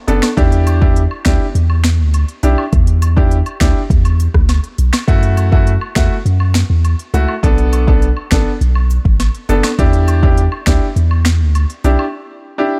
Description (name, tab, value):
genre	dancehall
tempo	102 BPM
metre	4/4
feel	straight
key	unclear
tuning	A4 = 440 Hz
part	bright grand piano	accompaniment	0.1-12.8 s	A3 to A4	-21 LUFS	equal	none
part	punchy sub bass	bass	0.1-12.0 s	F#1 to F#2	-15 LUFS	equal	none
part	afro-pop drum kit	drums	0.1-12.0 s	finger snaps, hi-hat, kick drum, rim click, snare drum	-17 LUFS	equal	none
part	cabasa and woodblock	percussion	0.1-12.1 s	none	-32 LUFS	equal	none
room	digital ambience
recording	dark, warm production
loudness	-14 LUFS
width	mono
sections	0.0-12.8 A section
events	break 12.1-12.8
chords	0.4 Em7; 5.1 F#m7; 7.4 Bm7; 9.8 Em7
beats	| 0.37 0.96 1.55 2.14 | 2.73 3.31 3.90 4.49 | 5.08 5.67 6.26 6.84 | 7.43 8.02 8.61 9.20 | 9.79 10.37 10.96 11.55 | 12.14 12.73